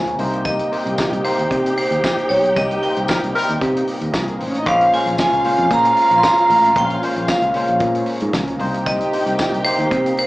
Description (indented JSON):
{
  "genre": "disco",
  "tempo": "114 BPM",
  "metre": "4/4",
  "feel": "straight",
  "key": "unclear",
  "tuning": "A4 = 440 Hz",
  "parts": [
    { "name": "vibraphone with hard mallets", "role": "melody", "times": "0.0-10.3 s", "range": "C5 to C6", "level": "-18 LUFS", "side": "right 1 dB", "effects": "plate reverb, slapback echo" },
    { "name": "barky tine electric piano", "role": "accompaniment", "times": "0.0-10.3 s", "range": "Bb2 to C5", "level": "-25 LUFS", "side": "left 1 dB", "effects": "wide subtle chorus, plate reverb, slapback echo" },
    { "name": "overdriven tonewheel organ", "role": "sustained chords", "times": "0.0-10.3 s", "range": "Bb2 to Eb4", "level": "-29 LUFS", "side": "equal", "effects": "lush chorus, plate reverb" },
    { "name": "fingered electric bass", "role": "bass", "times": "0.0-10.1 s", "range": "A1 to C3", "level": "-23 LUFS", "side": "equal", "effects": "none" },
    { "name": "warm soul drum kit", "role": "drums", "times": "0.1-10.3 s", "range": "hi-hat, kick drum, snare drum", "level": "-25 LUFS", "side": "equal", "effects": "none" },
    { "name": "dark studio string section", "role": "second line", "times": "0.2-10.3 s", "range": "G3 to G5", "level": "-24 LUFS", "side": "equal", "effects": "plate reverb, slapback echo" },
    { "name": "tambourine", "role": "percussion", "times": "1.0-9.5 s", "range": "none", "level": "-32 LUFS", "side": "left 1 dB", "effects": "none" },
    { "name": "clear horn section", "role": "stabs", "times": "3.1-3.5 s", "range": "G3 to Bb4", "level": "-21 LUFS", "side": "left 1 dB", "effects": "plate reverb, slapback echo" }
  ],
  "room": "moderate club reverb, RT60 0.5 s",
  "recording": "live gig heard through the venue's PA, club reverb, small speaker sound",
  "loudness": "-15 LUFS",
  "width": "side -18 dB against mid",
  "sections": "0.0-10.3 A section",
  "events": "band accent 2.6-4.7",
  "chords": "0.2 Cm7; 4.7 Bbm9; 8.6 Cm7"
}